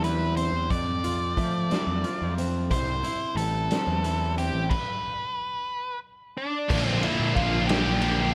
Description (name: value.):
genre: quiet-loud alternative rock.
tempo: 60 BPM (dotted quarters).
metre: 6/8.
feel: straight.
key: unclear.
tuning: A4 = 438 Hz.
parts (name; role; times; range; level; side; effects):
octave-fuzz lead guitar; melody; 0.0-8.3 s; D4 to D5; -32 LUFS; equal; distortion.
fingerpicked swing-style acoustic guitar; arpeggios; 0.0-4.7 s; F2 to F4; -36 LUFS; equal; none.
fuzz picked electric bass; bass; 0.0-8.3 s; A1 to F3; -30 LUFS; equal; overdrive.
raw garage drum kit; drums; 0.0-8.2 s; crash cymbal, hi-hat, kick drum, ride cymbal, snare drum; -33 LUFS; equal; none.
heavy high-gain guitar; riff; 6.7-8.3 s; Bb2 to F4; -33 LUFS; equal; distortion.
high-gain distorted guitar; riff; 6.7-8.3 s; Bb2 to F4; -33 LUFS; equal; distortion.
thick fuzz guitar; riff; 6.7-8.3 s; Bb2 to D4; -32 LUFS; equal; distortion.
room: light reverb.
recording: none.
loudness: -26 LUFS.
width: mono.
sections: 0.0-6.7 A section; 6.7-8.3 B section.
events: stop 4.7-6.7.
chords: 0.0 C; 0.7 F; 2.7 C; 4.7 N.C.; 6.7 Bb6.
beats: | 0.71 1.71 | 2.71 3.71 | 4.71 5.70 | 6.70 7.69.